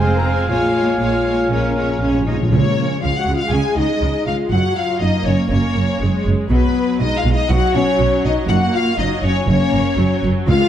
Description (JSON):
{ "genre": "cinematic, heroic adventure film score", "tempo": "121 BPM", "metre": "4/4", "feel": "straight", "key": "unclear", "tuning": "A4 = 441 Hz", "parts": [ { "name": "rich symphonic violin section", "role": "melody", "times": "0.0-10.7 s", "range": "Cb5 to Ab5", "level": "-25 LUFS", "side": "left 4 dB", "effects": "none" }, { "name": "clear oboe", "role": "second line", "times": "0.0-2.3 s", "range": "F5", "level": "-26 LUFS", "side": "right 2 dB", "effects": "none" }, { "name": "concert flute", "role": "second line", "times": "0.0-2.3 s", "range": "Ab5", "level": "-27 LUFS", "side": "left 1 dB", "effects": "none" }, { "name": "rich symphonic violin section", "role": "second line", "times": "0.0-10.7 s", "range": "Bb4 to Bb5", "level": "-26 LUFS", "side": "left 3 dB", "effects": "none" }, { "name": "warm clarinet", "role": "second line", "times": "0.0-2.2 s", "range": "C5 to Db5", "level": "-27 LUFS", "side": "left 4 dB", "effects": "none" }, { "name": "rich symphonic viola section", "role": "accompaniment", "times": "0.0-10.7 s", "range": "Gb3 to F4", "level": "-25 LUFS", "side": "right 1 dB", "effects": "none" }, { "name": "mellow French horn section", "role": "sustained chords", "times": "0.0-10.7 s", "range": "Bb3 to Bb4", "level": "-21 LUFS", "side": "left 3 dB", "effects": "none" }, { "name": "rich symphonic cello section", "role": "bass", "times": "0.0-10.6 s", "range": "Db2 to Eb4", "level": "-22 LUFS", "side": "right 2 dB", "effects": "none" }, { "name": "rich symphonic double bass section", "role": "bass", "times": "0.0-10.6 s", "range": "F1 to Db2", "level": "-20 LUFS", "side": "right 2 dB", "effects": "none" }, { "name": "timpani", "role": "percussion", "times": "1.5-3.2, 10.5-10.7 s", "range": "Bb2 to Db3", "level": "-20 LUFS", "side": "equal", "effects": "none" } ], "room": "moderate scoring stage reverb, RT60 1.7 s", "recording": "dark, warm production", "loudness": "-15 LUFS", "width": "side -10 dB against mid", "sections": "0.0-2.5 A section; 2.5-10.7 B section", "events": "timpani fill 1.5-2.5", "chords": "0.5 Bbm7; 2.5 Db5; 4.5 Gb; 6.5 Cb5; 8.5 Gb" }